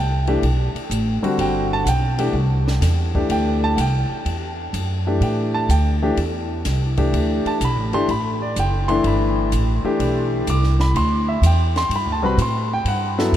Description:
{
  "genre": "modal jazz",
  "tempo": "126 BPM",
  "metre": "4/4",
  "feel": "swing 68% on 8ths",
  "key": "D mixolydian",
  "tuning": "A4 = 442 Hz",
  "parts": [
    { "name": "clear concert grand piano", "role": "accompaniment", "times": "0.0-13.3 s", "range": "D3 to D6", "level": "-21 LUFS", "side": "left 1 dB", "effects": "none" },
    { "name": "upright bass", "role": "bass", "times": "0.0-13.4 s", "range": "F#1 to A2", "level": "-20 LUFS", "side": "equal", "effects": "none" },
    { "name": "compact cocktail drum kit", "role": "drums", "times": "0.3-13.4 s", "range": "hi-hat, kick drum, ride cymbal, snare drum", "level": "-30 LUFS", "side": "left 2 dB", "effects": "none" }
  ],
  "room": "moderate huge ambient reverb, RT60 8.1 s",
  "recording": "in a vast, echoing space",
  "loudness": "-17 LUFS",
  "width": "side -11 dB against mid",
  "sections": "0.0-13.4 A section",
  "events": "none",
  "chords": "0.0 D9sus4",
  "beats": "0.43 0.91 | 1.39 1.87 2.35 2.83 | 3.31 3.78 4.26 4.74 | 5.22 5.70 6.18 6.65 | 7.13 7.61 8.09 8.56 | 9.04 9.52 10.00 10.47 | 10.95 11.43 11.90 12.38 | 12.86 13.34"
}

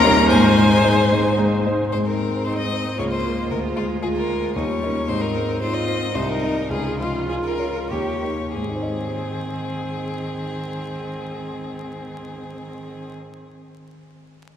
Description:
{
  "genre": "quick classical-period movement for piano quartet",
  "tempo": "92-115 BPM",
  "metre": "3/4",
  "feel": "rubato",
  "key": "Ab major",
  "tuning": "A4 = 440 Hz",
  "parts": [
    { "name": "clear violin", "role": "melody", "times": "0.0-13.1 s", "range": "F4 to Bb5", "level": "-26 LUFS", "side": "left 4 dB", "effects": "none" },
    { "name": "rich cello", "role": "second line", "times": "0.0-13.1 s", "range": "Eb3 to G4", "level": "-26 LUFS", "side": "right 1 dB", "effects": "none" },
    { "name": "rich viola", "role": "accompaniment", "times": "0.0-13.1 s", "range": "G3 to C5", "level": "-27 LUFS", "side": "right 1 dB", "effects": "none" },
    { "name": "warm grand piano", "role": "accompaniment", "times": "0.0-13.5 s", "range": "C2 to Eb5", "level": "-22 LUFS", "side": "left 1 dB", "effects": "none" }
  ],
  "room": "wet church reverb, RT60 3.9 s",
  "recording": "recorded in a church or concert hall, vinyl crackle",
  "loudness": "-19 LUFS",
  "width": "side -9 dB against mid",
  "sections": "0.0-1.9 A section; 1.9-8.5 B section; 8.5-12.4 C section",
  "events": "slowing down 4.3-8.5",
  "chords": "0.3 Ab; 3.0 Bbm/Db; 3.5 Bb7/D; 4.5 Eb7; 5.1 Ab; 6.1 Cm; 6.7 Db; 7.9 Eb7; 8.5 Ab",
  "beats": "| 0.29 0.84 1.38 | 1.92 2.45 2.98 | 3.50 4.03 4.55 | 5.07 5.61 6.15 | 6.70 7.28 7.89 | 8.54 9.18 9.81 | 10.45 11.09 11.73"
}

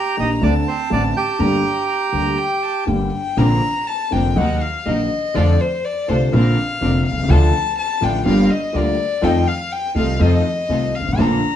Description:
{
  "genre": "tango",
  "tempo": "123 BPM",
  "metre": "4/4",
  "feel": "rubato",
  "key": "G harmonic minor, Bb major from 3.4 s",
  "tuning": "A4 = 439 Hz",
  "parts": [
    { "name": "bandoneon", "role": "melody", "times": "0.0-2.8 s", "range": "C4 to G5", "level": "-21 LUFS", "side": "right 5 dB", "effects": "none" },
    { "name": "warm violin", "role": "second line", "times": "0.0-11.6 s", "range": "C5 to Bb5", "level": "-22 LUFS", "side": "left 4 dB", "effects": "none" },
    { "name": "warm concert grand piano", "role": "accompaniment", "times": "0.2-11.4 s", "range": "F1 to G4", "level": "-19 LUFS", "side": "left 2 dB", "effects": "none" },
    { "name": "upright bass", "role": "bass", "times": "0.2-11.4 s", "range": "F1 to F2", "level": "-19 LUFS", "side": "right 1 dB", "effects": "none" },
    { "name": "bright symphonic string section", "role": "stabs", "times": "3.4-11.4 s", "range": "Bb3 to Bb4", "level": "-27 LUFS", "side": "right 2 dB", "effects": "none" }
  ],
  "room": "wet studio reverb, RT60 0.6 s",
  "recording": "heard from further back in the room, vinyl crackle",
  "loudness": "-16 LUFS",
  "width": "side -10 dB against mid",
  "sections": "0.0-3.4 A section; 3.4-11.6 B section",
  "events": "violin solo 3.4-11.6",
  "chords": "0.4 D7; 1.4 Gm; 3.4 Bbadd9; 4.4 Ebm; 5.3 F6; 6.3 Bbadd9; 7.3 Dm; 8.3 Gm7; 9.2 F7",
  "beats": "0.42 0.91 | 1.40 1.89 2.38 2.88 | 3.37 3.87 4.37 4.86 | 5.35 5.84 6.33 6.81 | 7.30 7.78 8.26 8.74 | 9.23 9.71 10.20 10.69 | 11.18"
}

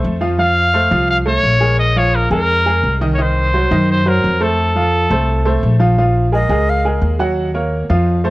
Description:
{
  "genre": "latin",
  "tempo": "172 BPM",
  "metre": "4/4",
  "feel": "straight",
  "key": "unclear",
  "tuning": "A4 = 440 Hz",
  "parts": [
    { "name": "bright baby grand piano", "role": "accompaniment", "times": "0.0-8.3 s", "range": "Eb3 to Gb5", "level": "-18 LUFS", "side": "right 1 dB", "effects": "none" },
    { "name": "upright bass", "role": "bass", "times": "0.0-8.3 s", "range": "Bb1 to Gb2", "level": "-16 LUFS", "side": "left 1 dB", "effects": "none" },
    { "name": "clear trumpet", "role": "melody", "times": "0.4-5.6 s", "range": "A4 to F5", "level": "-16 LUFS", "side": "equal", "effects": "none" },
    { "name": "breathy bright jazz flute", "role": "melody", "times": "6.3-6.9 s", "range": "Eb5 to F5", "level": "-21 LUFS", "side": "right 1 dB", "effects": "none" }
  ],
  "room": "light reverb",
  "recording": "worn, warbling old tape, cassette tape, warbly pitch drift",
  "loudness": "-12 LUFS",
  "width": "side -19 dB against mid",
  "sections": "0.0-6.0 A section; 6.0-8.3 B section",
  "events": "flute solo 6.0-8.3",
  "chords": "0.0 F; 1.8 Bb5; 3.2 Cdim; 4.6 F; 6.0 Bbm7; 6.7 Db5; 7.4 Ebm7",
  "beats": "0.04 | 0.39 0.74 1.09 1.44 | 1.79 2.14 2.49 2.84 | 3.19 3.53 3.88 4.23 | 4.58 4.93 5.28 5.63 | 5.98 6.33 6.68 7.03 | 7.38 7.72 8.07"
}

